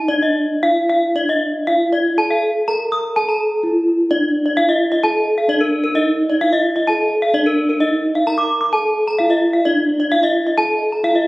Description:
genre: gamelan.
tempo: 110-130 BPM.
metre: 4/4.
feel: straight.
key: D pelog.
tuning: A4 = 442 Hz.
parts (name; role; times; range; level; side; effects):
gamelan-type bronze metallophone; melody; 0.0-11.3 s; D4 to Bb4-40c; -17 LUFS; equal; none.
gamelan-type bronze metallophone; arpeggios; 0.1-11.3 s; Bb4-40c to Eb6; -18 LUFS; equal; none.
room: wet recital hall reverb, RT60 1.7 s.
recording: recorded on a phone in the room, club ambience.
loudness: -14 LUFS.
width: side -20 dB against mid.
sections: 0.0-4.1 A section; 4.1-11.3 B section.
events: none.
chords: none.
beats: | 0.09 0.63 1.16 1.67 | 2.18 2.67 3.16 3.64 | 4.10 4.57 5.03 5.49 | 5.95 6.42 6.88 7.34 | 7.80 8.26 8.73 9.19 | 9.65 10.11 10.57 11.04.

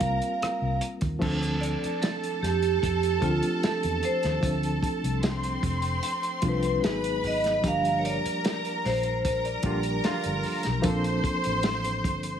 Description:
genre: lush 1970s-style soul.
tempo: 75 BPM.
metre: 4/4.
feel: straight.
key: D minor.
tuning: A4 = 439 Hz.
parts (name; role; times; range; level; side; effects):
vibraphone with medium hard mallets; melody; 0.0-10.2 s; F4 to F5; -29 LUFS; right 2 dB; none.
rich studio string section; second line; 0.0-12.4 s; C4 to C6; -32 LUFS; equal; none.
barky reed electric piano; accompaniment; 0.0-12.4 s; F3 to Bb4; -31 LUFS; left 1 dB; overdrive, fast tremolo.
vintage muted fingered electric bass; bass; 0.0-12.4 s; F1 to F2; -30 LUFS; right 1 dB; none.
warm soul drum kit; drums; 0.0-12.4 s; crash cymbal, hi-hat, kick drum, rim click, snare drum; -31 LUFS; right 1 dB; none.
warm horn section; stabs; 9.6-10.6 s; D3 to F4; -35 LUFS; right 4 dB; none.
room: light reverb.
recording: none.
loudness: -24 LUFS.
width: side -8 dB against mid.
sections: 0.0-1.2 A section; 1.2-12.4 B section.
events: vibraphone solo 1.2-12.4.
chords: 0.0 C7sus4; 1.2 Dm7; 6.8 G#m7; 7.6 Gm7; 10.8 Bbmaj9.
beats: 0.41 | 1.22 2.02 2.82 3.62 | 4.42 5.23 6.03 6.83 | 7.63 8.44 9.24 10.04 | 10.84 11.64.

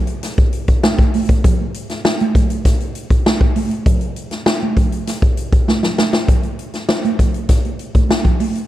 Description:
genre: funk.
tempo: 99 BPM.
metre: 4/4.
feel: straight.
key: none.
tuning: none.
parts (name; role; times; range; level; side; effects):
swinging big-band drum kit; drums; 0.1-8.7 s; hi-hat, kick drum, snare drum; -14 LUFS; equal; none.
congas; percussion; 0.4-8.5 s; none; -21 LUFS; right 4 dB; none.
room: light reverb.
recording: dark, warm production.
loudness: -14 LUFS.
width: side -14 dB against mid.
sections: 0.0-6.3 A section; 6.3-8.7 B section.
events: drum fill 5.7-6.3.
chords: none.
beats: 0.23 0.83 | 1.44 2.04 2.65 3.25 | 3.86 4.46 5.07 5.67 | 6.28 6.88 7.49 8.10.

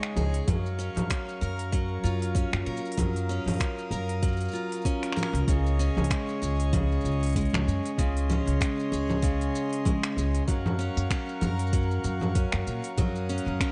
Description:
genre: folktronica.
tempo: 96 BPM.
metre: 4/4.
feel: swing 56% on 16ths.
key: Db major.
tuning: A4 = 440 Hz.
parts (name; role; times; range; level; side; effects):
accordion; sustained chords; 0.0-13.7 s; Ab4 to Eb6; -38 LUFS; equal; vintage 12-bit sampler grit.
picked steel-string acoustic guitar; arpeggios; 0.0-13.7 s; Db3 to Bb4; -34 LUFS; equal; digital delay.
organic electronic drum kit; drums; 0.0-13.7 s; congas, finger snaps, hi-hat, shaker; -35 LUFS; equal; none.
upright bass; bass; 0.2-13.6 s; Db2 to Bb2; -31 LUFS; equal; none.
electronic kick drum; drums; 0.5-13.7 s; none; -30 LUFS; equal; none.
room: light reverb.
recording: dark, warm production, nothing above 10.3 kHz.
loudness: -28 LUFS.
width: mono.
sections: 0.0-5.5 A section; 5.5-13.7 B section.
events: none.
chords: 0.5 Gbmaj7; 5.5 Dbsus2; 10.5 Gbmaj7.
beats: | 0.48 1.10 1.73 2.35 | 2.98 3.60 4.23 4.86 | 5.48 6.11 6.73 7.36 | 7.98 8.61 9.23 9.86 | 10.48 11.11 11.73 12.36 | 12.98 13.61.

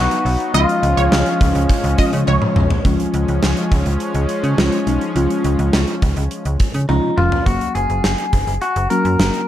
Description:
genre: synth-pop.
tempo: 104 BPM.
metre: 4/4.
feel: straight.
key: unclear.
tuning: A4 = 440 Hz.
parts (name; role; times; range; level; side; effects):
clean electric guitar; melody; 0.0-2.2, 6.9-9.5 s; D#4 to A#4; -20 LUFS; left 2 dB; none.
muted felt-like synth keys; accompaniment; 0.0-9.5 s; E#3 to E#5; -22 LUFS; left 2 dB; chorus.
lush unison pad; sustained chords; 0.0-7.4 s; E#3 to D#4; -23 LUFS; equal; chorus.
slap-like FM bass; bass; 0.0-9.3 s; E#1 to C#3; -19 LUFS; equal; none.
gated 80s drum kit; drums; 0.1-9.5 s; hi-hat, kick drum, snare drum, toms; -19 LUFS; equal; none.
wide unison pluck; second line; 0.5-2.7 s; C#5 to D#5; -23 LUFS; right 2 dB; phaser, tape echo.
room: light reverb, small room ambience.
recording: dark, warm production.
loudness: -14 LUFS.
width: side -12 dB against mid.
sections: 0.0-2.8 A section; 2.8-7.5 B section; 7.5-9.5 C section.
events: drum fill 2.3-2.8, 6.9-7.5.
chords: 0.0 B; 0.5 C#; 7.5 F#.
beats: | 0.54 1.12 1.70 2.27 | 2.85 3.43 4.00 4.58 | 5.16 5.73 6.31 6.89 | 7.46 8.04 8.62 9.20.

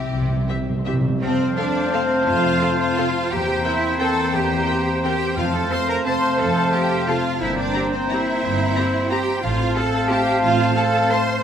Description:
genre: classical, orchestral ballroom waltz.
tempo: 154-195 BPM.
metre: 3/4.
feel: rubato.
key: F major.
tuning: A4 = 439 Hz.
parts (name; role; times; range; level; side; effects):
bright clarinet; second line; 0.0-11.4 s; C4 to C5; -30 LUFS; left 3 dB; none.
mellow large flute ensemble; second line; 0.0-11.4 s; E5 to Bb5; -30 LUFS; left 2 dB; none.
rich studio violin section; second line; 0.0-11.4 s; G4 to C6; -30 LUFS; left 2 dB; none.
concert harp; arpeggios; 0.0-11.4 s; E2 to C6; -29 LUFS; left 7 dB; none.
timpani; percussion; 0.0-1.2, 5.4-5.8 s; F2 to C3; -25 LUFS; right 1 dB; none.
rich studio cello section; bass; 0.1-11.4 s; C3 to C5; -24 LUFS; right 2 dB; none.
warm studio double bass section; bass; 0.1-10.7 s; G1 to F2; -27 LUFS; right 2 dB; none.
rich studio violin section; melody; 0.5-11.2 s; E5 to Bb5; -32 LUFS; left 4 dB; none.
rich studio viola section; accompaniment; 0.5-11.2 s; C4 to Bb4; -32 LUFS; right 2 dB; none.
dark French horn section; sustained chords; 0.5-11.4 s; A3 to E4; -28 LUFS; left 2 dB; none.
warm oboe; second line; 1.2-11.4 s; F5 to G5; -30 LUFS; right 1 dB; none.
dark trumpet section; stabs; 1.2-11.4 s; C5 to F5; -25 LUFS; right 2 dB; none.
room: wet scoring stage reverb, RT60 1.8 s.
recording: none.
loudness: -18 LUFS.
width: side -8 dB against mid.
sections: 0.0-1.2 A section; 1.2-11.4 B section.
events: timpani fill 0.0-1.2.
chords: 0.0 C; 1.2 F; 3.3 C7/E; 5.4 F; 7.4 C7/G; 9.4 F/A.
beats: | 0.12 0.48 0.86 | 1.22 1.57 1.93 | 2.27 2.62 2.98 | 3.31 3.65 4.00 | 4.33 4.67 5.03 | 5.37 5.71 6.06 | 6.39 6.73 7.07 | 7.40 7.74 8.09 | 8.42 8.76 9.11 | 9.43 9.75 10.09 | 10.42 10.76 11.11 | 11.43.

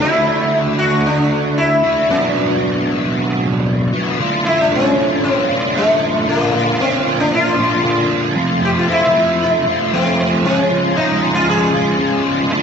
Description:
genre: rock.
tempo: 115 BPM.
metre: 4/4.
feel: straight.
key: unclear.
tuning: A4 = 437 Hz.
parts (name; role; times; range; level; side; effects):
sitar; melody; 0.0-12.2 s; A3 to G#4; -17 LUFS; left 1 dB; diffuse ambient delay.
overdriven electric guitar; riff; 0.0-12.6 s; F2 to F#4; -16 LUFS; right 1 dB; rotary speaker.
room: wet plate reverb, RT60 3.5 s.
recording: dreamy mix soaked in reverb, nothing above 7.8 kHz.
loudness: -13 LUFS.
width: side -6 dB against mid.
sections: 0.0-4.2 A section; 4.2-12.6 B section.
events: none.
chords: 0.0 D; 2.1 Bm; 4.2 Dm; 6.3 Bb; 8.4 F; 10.5 C#.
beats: | 0.01 0.54 1.06 1.58 | 2.10 2.63 3.15 3.67 | 4.20 4.72 5.24 5.76 | 6.28 6.80 7.32 7.84 | 8.37 8.89 9.41 9.93 | 10.45 10.97 11.49 12.02 | 12.54.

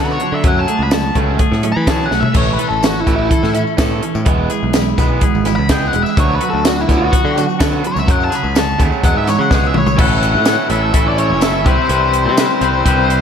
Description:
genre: indie rock.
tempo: 126 BPM.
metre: 4/4.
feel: straight.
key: A major.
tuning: A4 = 437 Hz.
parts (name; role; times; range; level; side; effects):
octave-fuzz lead guitar; melody; 0.0-13.2 s; E4 to B5; -19 LUFS; left 2 dB; distortion, slapback echo, analog delay.
overdriven electric guitar; riff; 0.0-13.2 s; F#2 to E4; -20 LUFS; right 9 dB; wide subtle chorus, slapback echo.
twangy electric guitar; riff; 0.0-13.2 s; E3 to B4; -22 LUFS; left 8 dB; slapback echo.
modern bright picked electric bass; bass; 0.0-13.2 s; E1 to E3; -19 LUFS; equal; none.
compact cocktail drum kit; drums; 0.2-13.2 s; crash cymbal, hi-hat, kick drum, snare drum, tambourine, toms; -16 LUFS; equal; none.
tambourine; percussion; 2.8-12.5 s; none; -36 LUFS; left 14 dB; none.
clear trumpet; second line; 10.0-13.2 s; C4 to F#4; -27 LUFS; left 6 dB; none.
mellow tonewheel organ; sustained chords; 10.0-13.2 s; C#5 to E6; -28 LUFS; equal; none.
room: moderate lush hall reverb, RT60 1.8 s, studio reverb.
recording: big arena sound.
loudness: -12 LUFS.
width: side -7 dB against mid.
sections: 0.0-10.0 A section; 10.0-13.2 B section.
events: lead electric guitar solo 0.0-10.0; drum fill 2.1, 9.5-10.0.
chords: 0.4 F#madd9; 2.4 A; 4.3 E; 6.2 Bm/D; 8.1 F#madd9; 9.0 Eadd9; 10.0 A; 11.7 Cmaj7.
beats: | 0.44 0.92 1.40 1.87 | 2.35 2.83 3.31 3.79 | 4.27 4.74 5.22 5.70 | 6.18 6.66 7.13 7.61 | 8.09 8.56 9.04 9.52 | 10.00 10.47 10.95 11.43 | 11.90 12.38 12.86.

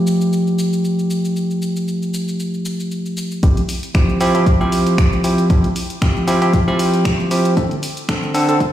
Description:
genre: deep house.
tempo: 116 BPM.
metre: 4/4.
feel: swing 55% on 16ths.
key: unclear.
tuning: A4 = 442 Hz.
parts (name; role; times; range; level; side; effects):
barky tine electric piano; stabs; 0.0-8.6 s; D3 to A4; -16 LUFS; equal; sidechain pumping, low-pass filter, dub echo.
punchy analog drum machine; drums; 0.1-8.7 s; cabasa, finger snaps, hi-hat; -28 LUFS; left 1 dB; none.
electronic kick drum; drums; 3.4-8.7 s; none; -17 LUFS; equal; overdrive.
room: light reverb.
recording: played on a big sound system in a bare room, stone room reverb, high-pass filter.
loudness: -15 LUFS.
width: side -12 dB against mid.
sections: 0.0-3.4 A section; 3.4-8.7 B section.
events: filter sweep on tine electric piano 0.0-3.4; build-up 3.4-8.7.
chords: 0.0 Fmaj9; 3.4 Cadd11/F; 7.6 Amadd11/D.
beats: 0.33 0.84 | 1.36 1.88 2.40 2.91 | 3.43 3.95 4.47 4.98 | 5.50 6.02 6.54 7.05 | 7.57 8.09 8.60.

